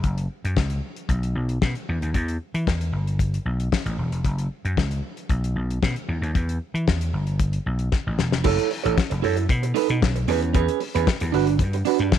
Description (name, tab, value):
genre	disco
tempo	114 BPM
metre	4/4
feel	straight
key	F# dorian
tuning	A4 = 439 Hz
part	vintage slap bass	bass	0.0-12.2 s	E1 to E3	-24 LUFS	equal	none
part	damped 70s drum kit	drums	0.0-12.2 s	crash cymbal, hi-hat, kick drum, snare drum	-24 LUFS	left 3 dB	none
part	electric guitar at the edge of break-up	accompaniment	8.4-12.1 s	C#4 to C#5	-23 LUFS	right 16 dB	none
room	studio reverb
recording	1960s-style stereo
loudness	-21 LUFS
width	side -10 dB against mid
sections	0.0-8.5 A section; 8.5-12.2 B section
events	drum fill 7.9-8.5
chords	0.0 F#5; 1.1 N.C.; 2.9 G; 4.2 F#5; 5.3 N.C.; 7.1 G; 8.5 F#m7; 9.5 B7; 10.3 E6; 11.3 Gmaj7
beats	| 0.04 0.56 1.09 1.62 | 2.14 2.67 3.19 3.72 | 4.25 4.77 5.30 5.82 | 6.35 6.88 7.40 7.93 | 8.45 8.98 9.50 10.03 | 10.55 11.07 11.60 12.12